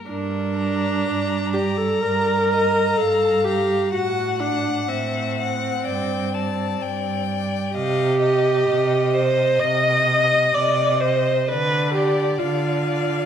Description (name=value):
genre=classical, slow romantic movement for string quartet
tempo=64 BPM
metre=4/4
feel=rubato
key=G minor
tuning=A4 = 439 Hz
part: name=rich violin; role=second line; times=0.0-13.3 s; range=D5 to Bb5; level=-30 LUFS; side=left 5 dB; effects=none
part: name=rich violin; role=melody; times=0.1-13.3 s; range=Bb4 to A5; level=-28 LUFS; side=left 9 dB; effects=none
part: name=rich viola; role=accompaniment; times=0.1-13.3 s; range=C4 to Eb5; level=-20 LUFS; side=right 1 dB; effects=none
part: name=clear cello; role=bass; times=0.1-13.2 s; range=G2 to D3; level=-25 LUFS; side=right 2 dB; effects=none
room=wet recital hall reverb, RT60 1.3 s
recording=minimal, uncompressed stereo recording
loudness=-18 LUFS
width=side -8 dB against mid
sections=0.1-13.3 A section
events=none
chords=0.1 Gm; 3.9 F#dim/A; 5.8 G5; 7.7 Cm; 11.5 Dmadd11